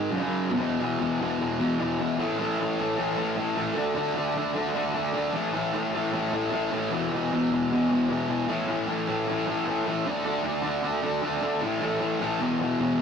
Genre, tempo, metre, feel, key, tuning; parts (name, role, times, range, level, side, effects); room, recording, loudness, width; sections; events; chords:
rock; 152 BPM; 4/4; straight; A4 = 440 Hz
fuzz guitar; solo; 0.0-13.0 s; E2 to D4; -24 LUFS; left 1 dB; distortion
wet stone room reverb, RT60 1.3 s; rough rehearsal-room recording, tube saturation, cassette tape; -24 LUFS; side -6 dB against mid
0.6-13.0 A section
0.1 E5; 2.2 A5; 3.8 D5; 5.3 A5; 6.9 E5; 8.5 A5; 10.1 D5; 11.6 A5; 12.4 E5